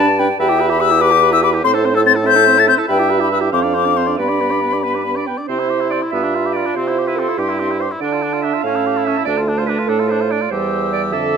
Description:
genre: quick classical-period movement for wind quintet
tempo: 96 BPM (dotted quarters)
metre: 6/8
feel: straight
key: C major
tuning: A4 = 438 Hz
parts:
  - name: concert flute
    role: melody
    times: 0.0-11.4 s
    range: G5 to A6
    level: -18 LUFS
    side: left 9 dB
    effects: none
  - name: warm oboe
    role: second line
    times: 0.0-11.4 s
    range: B3 to D5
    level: -23 LUFS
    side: left 2 dB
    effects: none
  - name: bright clarinet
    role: accompaniment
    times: 0.0-11.4 s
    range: G4 to G5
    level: -21 LUFS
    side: right 11 dB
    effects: none
  - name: mellow French horn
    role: accompaniment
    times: 0.0-11.4 s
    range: D3 to G4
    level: -22 LUFS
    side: right 3 dB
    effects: none
  - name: warm bassoon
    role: bass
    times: 0.0-11.4 s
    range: D2 to D3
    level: -20 LUFS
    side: right 2 dB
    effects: none
room: moderate recital hall reverb, RT60 1.4 s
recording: close, detailed microphones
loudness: -13 LUFS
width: side -6 dB against mid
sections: 0.0-5.5 A section; 5.5-11.4 B section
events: none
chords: 0.4 Em; 1.6 Am; 2.9 Em/G; 3.5 Dm7/F; 4.2 G; 5.5 C; 6.1 G7; 6.8 C; 8.0 Dm; 8.6 A; 9.3 Dm; 10.5 C/E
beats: | 0.39 1.01 | 1.64 2.27 | 2.89 3.53 | 4.18 4.84 | 5.49 6.12 | 6.75 7.38 | 8.01 8.64 | 9.26 9.88 | 10.51 11.13

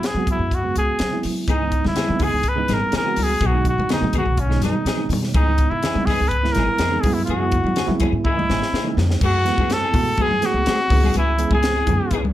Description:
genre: electric jazz fusion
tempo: 124 BPM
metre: 4/4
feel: straight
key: C# dorian, F# minor from 9.2 s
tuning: A4 = 442 Hz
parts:
  - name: clear trumpet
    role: melody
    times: 0.0-12.2 s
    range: C#4 to B4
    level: -22 LUFS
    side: equal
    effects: slapback echo, plate reverb
  - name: bright reed electric piano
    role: accompaniment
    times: 0.0-12.2 s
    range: B2 to D#5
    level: -26 LUFS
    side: right 6 dB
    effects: fast tremolo
  - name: crisp fusion drum kit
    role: drums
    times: 0.0-12.2 s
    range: crash cymbal, hi-hat, kick drum, snare drum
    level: -24 LUFS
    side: equal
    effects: none
  - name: upright bass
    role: bass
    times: 0.1-12.3 s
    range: G#1 to F#3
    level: -23 LUFS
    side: equal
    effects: none
  - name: clean electric guitar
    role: stabs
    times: 1.5-12.3 s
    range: E3 to G#4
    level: -29 LUFS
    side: left 4 dB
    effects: ensemble chorus
  - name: congas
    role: percussion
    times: 1.8-12.3 s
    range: none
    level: -28 LUFS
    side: left 3 dB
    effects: none
room: moderate club reverb, RT60 0.5 s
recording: none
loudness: -17 LUFS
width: side -13 dB against mid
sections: 0.0-9.2 A section; 9.2-12.3 B section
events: drum fill 8.3-9.2; reed electric piano fill 12.1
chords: 0.0 F#9sus4; 1.5 C#m9; 3.4 B6; 5.4 C#m9; 7.0 F#9sus4; 8.3 C#m69; 9.2 F#m11; 10.9 C#m7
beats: 0.04 0.52 1.01 | 1.49 1.97 2.46 2.94 | 3.43 3.91 4.39 4.88 | 5.36 5.84 6.33 6.81 | 7.29 7.77 8.26 8.74 | 9.22 9.70 10.19 10.67 | 11.15 11.63 12.12

